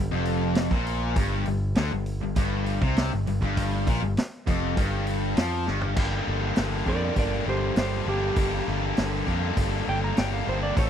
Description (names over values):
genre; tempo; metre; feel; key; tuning
classic rock; 100 BPM; 4/4; straight; G minor; A4 = 441 Hz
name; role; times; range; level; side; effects
distorted electric guitar; riff; 0.0-10.9 s; F2 to A4; -31 LUFS; right 13 dB; overdrive
overdriven electric guitar; riff; 0.0-10.9 s; F2 to A4; -29 LUFS; left 14 dB; none
modern bright picked electric bass; bass; 0.0-10.9 s; F1 to F2; -28 LUFS; equal; none
vintage drum kit; drums; 0.3-10.9 s; crash cymbal, hi-hat, kick drum, snare drum, toms; -26 LUFS; equal; none
clean lap steel guitar; melody; 6.9-10.9 s; G4 to Bb5; -29 LUFS; right 3 dB; slapback echo
room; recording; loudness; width
small room reverb; dry, close 1970s-style studio recording; -23 LUFS; side -9 dB against mid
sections
0.0-6.0 A section; 6.0-10.9 B section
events
drum fill 5.7-6.0; electric slide guitar solo 6.0-10.9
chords
0.0 Gm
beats
0.56 | 1.17 1.77 2.37 2.97 | 3.57 4.17 4.77 5.37 | 5.97 6.57 7.17 7.77 | 8.37 8.97 9.57 10.17 | 10.77